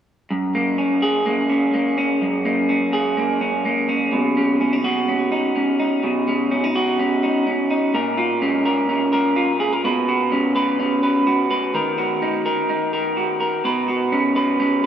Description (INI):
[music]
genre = indie pop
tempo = 126 BPM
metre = 4/4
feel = straight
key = F# major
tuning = A4 = 445 Hz
[part]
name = electric guitar through a small old amp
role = solo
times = 0.3-14.9 s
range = F#2 to B4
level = -17 LUFS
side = equal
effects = none
[sound]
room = wet cathedral reverb, RT60 6.0 s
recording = dreamy mix soaked in reverb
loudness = -17 LUFS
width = side -9 dB against mid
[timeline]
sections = 0.3-7.9 A section; 7.9-14.9 B section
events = none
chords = 0.3 F#add9; 4.1 Badd9; 7.9 A#m; 9.8 Bsus2; 11.7 D#m; 13.6 Bsus2